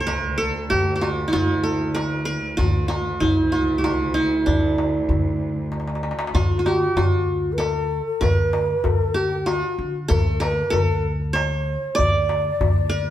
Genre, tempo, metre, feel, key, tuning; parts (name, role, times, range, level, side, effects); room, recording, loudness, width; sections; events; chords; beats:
Arabic maqam ensemble; 96 BPM; 3/4; straight; D maqam huzam; A4 = 440 Hz
qanun; melody; 0.0-13.1 s; D4 to D5; -23 LUFS; right 2 dB
upright bass; bass; 0.0-13.1 s; C2+50c to D3; -26 LUFS; equal
rich cello; drone; 0.0-6.4 s; D2; -31 LUFS; right 2 dB
darbuka; percussion; 0.1-12.8 s; -25 LUFS; left 1 dB
breathy mellow ney; second line; 6.3-13.1 s; F4+44c to Eb5; -25 LUFS; left 2 dB
wet stone room reverb, RT60 1.3 s; band playing live in one room; -19 LUFS; side -12 dB against mid
0.0-6.3 A section; 6.3-13.1 B section
drum fill 5.7-6.3
0.09 | 0.71 1.34 1.97 | 2.59 3.22 3.84 | 4.47 5.09 5.72 | 6.35 6.97 7.60 | 8.22 8.85 9.47 | 10.10 10.73 11.35 | 11.98 12.61